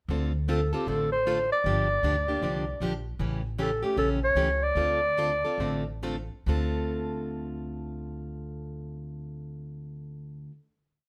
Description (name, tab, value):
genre	acoustic string swing (jazz manouche)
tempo	132-156 BPM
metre	4/4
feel	swing 63% on 8ths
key	D minor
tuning	A4 = 439 Hz
part	picked plugged-in steel-string acoustic guitar	accompaniment	0.1-10.5 s	C#3 to A4	-35 LUFS	equal	none
part	upright bass	bass	0.1-10.5 s	G1 to D2	-34 LUFS	equal	none
part	warm clarinet	melody	0.5-6.0 s	G4 to D5	-29 LUFS	equal	none
room	moderate studio reverb, RT60 0.8 s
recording	none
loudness	-28 LUFS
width	mono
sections	0.1-6.5 A section; 6.5-10.1 final chord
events	slowing down 3.2-6.5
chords	0.1 Dm7; 1.6 Gm7; 3.2 A7; 4.8 Dm7